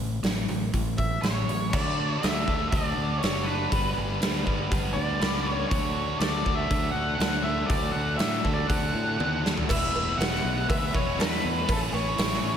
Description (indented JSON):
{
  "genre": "classic rock",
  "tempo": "120 BPM",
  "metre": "4/4",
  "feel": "straight",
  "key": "unclear",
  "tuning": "A4 = 442 Hz",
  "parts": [
    { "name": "overdriven electric guitar", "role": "riff", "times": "0.0-12.6 s", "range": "E2 to B4", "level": "-30 LUFS", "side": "equal", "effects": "slapback echo" },
    { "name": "growling fingered electric bass", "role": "bass", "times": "0.0-12.6 s", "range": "E1 to A2", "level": "-31 LUFS", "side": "equal", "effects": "overdrive" },
    { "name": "big rock drum kit", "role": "drums", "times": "0.2-12.4 s", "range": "crash cymbal, hi-hat, kick drum, snare drum, toms", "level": "-28 LUFS", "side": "equal", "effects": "none" },
    { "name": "octave-fuzz lead guitar", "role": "melody", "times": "1.0-12.6 s", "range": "A4 to F#5", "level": "-30 LUFS", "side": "equal", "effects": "distortion" },
    { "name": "cowbell", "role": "percussion", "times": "9.7-12.3 s", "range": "none", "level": "-38 LUFS", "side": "right 4 dB", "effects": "slapback echo" }
  ],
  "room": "moderate lush hall reverb, RT60 1.9 s, studio ambience",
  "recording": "big arena sound",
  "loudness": "-24 LUFS",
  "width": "side -8 dB against mid",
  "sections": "0.0-1.7 A section; 1.7-9.7 B section; 9.7-12.6 C section",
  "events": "drum fill 9.2-9.7",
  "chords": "0.0 A; 1.7 D; 3.7 G; 5.7 D; 9.7 E; 11.7 A"
}